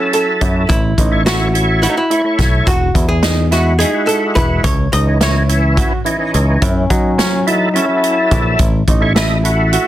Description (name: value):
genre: progressive instrumental, band music in an uneven meter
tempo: 213 BPM (eighths)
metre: 7/8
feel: straight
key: A lydian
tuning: A4 = 438 Hz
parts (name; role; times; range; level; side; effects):
- archtop guitar, miked and amplified; melody; 0.0-6.3 s; D#4 to D#5; -18 LUFS; equal; none
- overdriven tonewheel organ; accompaniment; 0.0-9.9 s; E3 to D#5; -18 LUFS; equal; chorus vibrato, slow rotary speaker
- warm grand piano; arpeggios; 0.0-9.9 s; C#4 to F#4; -22 LUFS; right 3 dB; none
- swinging big-band drum kit; drums; 0.1-9.9 s; hi-hat, kick drum, snare drum; -17 LUFS; equal; none
- picked electric bass; bass; 0.4-9.8 s; E1 to F#3; -15 LUFS; equal; none
- breathy trombone; second line; 6.6-8.9 s; C#4 to E4; -18 LUFS; left 3 dB; none
room: light reverb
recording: dense, heavily limited modern master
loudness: -12 LUFS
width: side -13 dB against mid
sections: 0.0-9.9 A section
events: none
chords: 0.0 F#m7; 0.7 A; 2.7 Eadd9; 4.6 C#madd9; 6.6 F#m7; 8.6 A